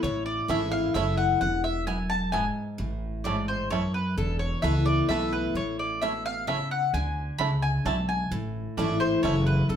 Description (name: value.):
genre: bluegrass.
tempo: 130 BPM.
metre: 3/4.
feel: straight.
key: unclear.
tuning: A4 = 440 Hz.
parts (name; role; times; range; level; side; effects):
mandolin; melody; 0.0-9.8 s; A4 to B5; -29 LUFS; left 2 dB; none.
picked steel-string acoustic guitar; accompaniment; 0.0-9.8 s; E2 to E4; -29 LUFS; left 1 dB; none.
upright bass; bass; 0.0-9.8 s; E1 to D2; -29 LUFS; equal; none.
bluegrass banjo; melody; 0.5-9.3 s; A3 to E4; -34 LUFS; right 8 dB; none.
room: wet studio reverb, RT60 0.8 s.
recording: heard from further back in the room.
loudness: -24 LUFS.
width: side -8 dB against mid.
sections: 0.0-2.8 A section; 2.8-9.8 A section.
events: none.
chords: 0.0 A; 1.4 E; 2.8 A; 4.2 Esus4; 5.6 A; 6.9 D5; 8.3 A.